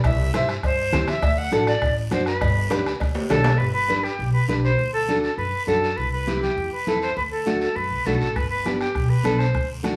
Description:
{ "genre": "latin, cumbia", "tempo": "202 BPM", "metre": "4/4", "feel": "straight", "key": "G major", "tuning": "A4 = 440 Hz", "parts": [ { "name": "bright reedy silver concert flute", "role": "second line", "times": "0.0-9.7 s", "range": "G4 to F#5", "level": "-27 LUFS", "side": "equal", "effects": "none" }, { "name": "upright bass", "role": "bass", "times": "0.0-10.0 s", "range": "G1 to G2", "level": "-27 LUFS", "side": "equal", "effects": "none" }, { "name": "bombo", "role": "percussion", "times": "0.0-3.6, 8.4-10.0 s", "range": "none", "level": "-30 LUFS", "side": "equal", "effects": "none" }, { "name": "cowbell and timbales", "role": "percussion", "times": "0.0-3.5 s", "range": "none", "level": "-33 LUFS", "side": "equal", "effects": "none" }, { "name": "guiro", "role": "percussion", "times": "0.0-10.0 s", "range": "none", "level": "-40 LUFS", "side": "equal", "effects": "none" }, { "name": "nylon-string guitar", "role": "accompaniment", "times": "0.3-10.0 s", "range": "A3 to C5", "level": "-27 LUFS", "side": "equal", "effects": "none" }, { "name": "congas", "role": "percussion", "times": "0.3-10.0 s", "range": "none", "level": "-35 LUFS", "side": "equal", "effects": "none" } ], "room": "moderate studio reverb, RT60 0.8 s", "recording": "band playing live in one room, studio reverb", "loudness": "-22 LUFS", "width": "mono", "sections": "0.0-3.6 A section; 3.6-10.0 B section", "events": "flute solo 0.0-3.6, 3.6-10.0; drum fill 2.7-3.6", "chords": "0.0 C; 1.2 D7; 2.4 G; 4.8 D; 6.0 C; 7.2 D; 8.4 G" }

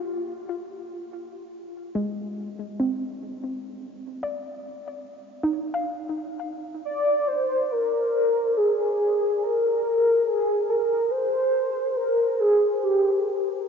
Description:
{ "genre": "ambient", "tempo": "free time", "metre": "none", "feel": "none", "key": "Ab lydian", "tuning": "A4 = 439 Hz", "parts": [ { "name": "soft round pluck", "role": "arpeggios", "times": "0.0-9.4 s", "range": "Ab3 to F5", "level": "-30 LUFS", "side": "equal", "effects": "analog chorus, ping-pong delay" }, { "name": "warm velvety synth lead", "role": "melody", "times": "6.8-13.5 s", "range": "G4 to D5", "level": "-20 LUFS", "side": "equal", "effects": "chorus, ping-pong delay" } ], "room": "wet cathedral reverb, RT60 7.5 s", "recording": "in a vast, echoing space, nothing above 7.5 kHz", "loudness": "-22 LUFS", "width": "side -6 dB against mid", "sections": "0.0-6.8 A section; 6.8-13.7 B section", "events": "none", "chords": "0.0 Bbsus2/Ab; 6.8 Ab" }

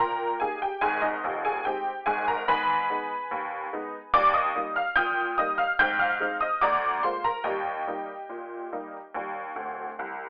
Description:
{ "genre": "ragtime piano", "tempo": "72 BPM", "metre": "2/4", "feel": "straight", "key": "Eb major", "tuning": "A4 = 441 Hz", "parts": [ { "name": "honky-tonk upright piano", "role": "solo", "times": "0.0-10.3 s", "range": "D1 to G6", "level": "-27 LUFS", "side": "equal", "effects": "none" } ], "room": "light reverb", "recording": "telephone sound", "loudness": "-27 LUFS", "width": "mono", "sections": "0.0-10.3 A section", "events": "honky-tonk piano fill 9.6-10.3", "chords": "0.0 Eb; 0.8 Ab; 2.5 Abm; 4.1 Eb; 5.8 Ab; 6.6 Bb7/D; 7.5 Eb" }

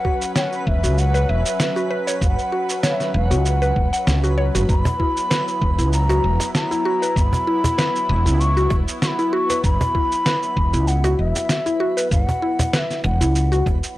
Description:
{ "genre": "organic downtempo", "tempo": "97 BPM", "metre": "4/4", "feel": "swing 54% on 16ths", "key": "unclear", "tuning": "A4 = 440 Hz", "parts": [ { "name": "breathy mellow bansuri", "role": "melody", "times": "0.0-13.9 s", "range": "E5 to C#6", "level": "-24 LUFS", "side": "left 1 dB", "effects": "analog delay" }, { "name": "warm analog pad", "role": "sustained chords", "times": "0.0-14.0 s", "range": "F#3 to B4", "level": "-30 LUFS", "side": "equal", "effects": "chorus, tremolo, sidechain pumping" }, { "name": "mallet-like synth pluck", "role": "arpeggios", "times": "0.0-13.7 s", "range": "E4 to F#5", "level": "-24 LUFS", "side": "left 1 dB", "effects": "chorus, analog delay" }, { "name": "twinkling granular texture", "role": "texture", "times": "0.0-14.0 s", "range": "B4", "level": "-36 LUFS", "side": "right 5 dB", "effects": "built-in reverb" }, { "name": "electronic kick drum", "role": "drums", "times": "0.1-13.8 s", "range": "none", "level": "-21 LUFS", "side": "equal", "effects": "none" }, { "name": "electronic cabasa and snare drum", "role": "drums", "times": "0.2-13.9 s", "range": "none", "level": "-24 LUFS", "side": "equal", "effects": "none" }, { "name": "woody fretless electric bass", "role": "bass", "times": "0.7-13.8 s", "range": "E1 to C#2", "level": "-19 LUFS", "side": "equal", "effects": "sidechain pumping" }, { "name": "cajon", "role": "percussion", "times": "4.9-13.8 s", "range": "none", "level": "-23 LUFS", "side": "right 1 dB", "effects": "none" } ], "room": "digital ambience", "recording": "dry, gritty hardware recording, cassette tape", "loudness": "-17 LUFS", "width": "side -16 dB against mid", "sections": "0.0-14.0 A section", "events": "none", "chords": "0.0 Esus2" }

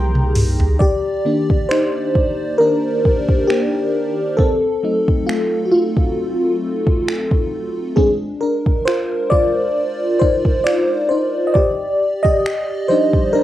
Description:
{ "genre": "contemporary R&B", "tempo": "67 BPM", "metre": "4/4", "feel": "swing 54% on 16ths", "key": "C minor", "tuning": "A4 = 440 Hz", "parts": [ { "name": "FM electric piano with soft pad layer", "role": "accompaniment", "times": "0.0-13.4 s", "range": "Eb3 to Eb5", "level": "-16 LUFS", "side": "equal", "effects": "chorus, phaser, cassette tape" }, { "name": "chorused pulse-width pad", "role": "sustained chords", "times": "0.0-0.8 s", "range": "Eb3 to Bb5", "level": "-31 LUFS", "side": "equal", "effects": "sidechain pumping, cassette tape" }, { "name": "warm 808-style bass", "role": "bass", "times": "0.0-0.8 s", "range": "C2", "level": "-18 LUFS", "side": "equal", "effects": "none" }, { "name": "worn celesta", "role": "texture", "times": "0.0-1.2 s", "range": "none", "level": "barely audible", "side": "none", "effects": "none" }, { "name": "smooth R&B drum kit", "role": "drums", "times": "0.2-13.3 s", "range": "finger snaps, hi-hat, kick drum, toms", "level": "-18 LUFS", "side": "equal", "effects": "cassette tape" } ], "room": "little or no reverb", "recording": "home recording on cassette", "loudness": "-15 LUFS", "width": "side -13 dB against mid", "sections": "0.8-13.4 A section", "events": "drum fill 0.0-0.8; FM electric piano solo 0.8-13.4", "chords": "0.0 Fm11/C (rootless); 0.8 Cm9; 4.4 F7b9; 8.0 Ab69; 11.6 Ebmaj7" }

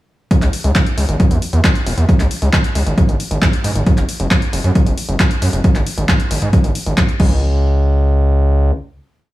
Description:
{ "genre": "uplifting trance", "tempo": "135 BPM", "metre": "4/4", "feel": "straight", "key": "C# minor", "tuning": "A4 = 440 Hz", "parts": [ { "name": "electronic kick drum", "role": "drums", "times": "0.3-7.3 s", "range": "none", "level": "-14 LUFS", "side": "equal", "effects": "overdrive, small room ambience" }, { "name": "punchy analog drum machine", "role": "drums", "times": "0.3-7.3 s", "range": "crash cymbal, handclaps, hi-hat", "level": "-22 LUFS", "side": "left 1 dB", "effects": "overdrive, small room ambience" }, { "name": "gritty driven synth bass", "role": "bass", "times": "0.4-8.7 s", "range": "E1 to G#2", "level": "-14 LUFS", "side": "equal", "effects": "sidechain pumping" } ], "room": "little or no reverb", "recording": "small room ambience", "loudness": "-13 LUFS", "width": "side -16 dB against mid", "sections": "0.3-7.4 drop; 7.4-9.3 final hit", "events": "drop 0.3-7.4", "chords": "none" }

